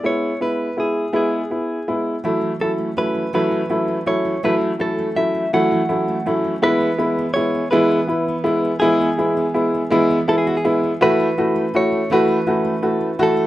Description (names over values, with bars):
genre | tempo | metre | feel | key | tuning
six-eight pop ballad | 55 BPM (dotted quarters) | 6/8 | straight | unclear | A4 = 440 Hz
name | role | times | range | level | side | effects
direct-recorded clean electric guitar | melody | 0.0-13.5 s | F#4 to F#5 | -23 LUFS | equal | none
clear upright piano | accompaniment | 0.0-13.5 s | F#3 to F#4 | -18 LUFS | equal | none
fingerpicked steel-string acoustic guitar | arpeggios | 2.2-13.5 s | E3 to A4 | -28 LUFS | right 4 dB | none
room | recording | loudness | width
moderate small room reverb, RT60 0.5 s | rough home demo mix | -16 LUFS | side -15 dB against mid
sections
0.0-6.6 A section; 6.6-13.5 B section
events
none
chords
0.0 E; 2.2 F#m7; 6.6 E; 11.0 F#m7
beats
| 0.06 1.15 | 2.25 3.34 | 4.44 5.54 | 6.63 7.72 | 8.82 9.91 | 11.01 12.10 | 13.20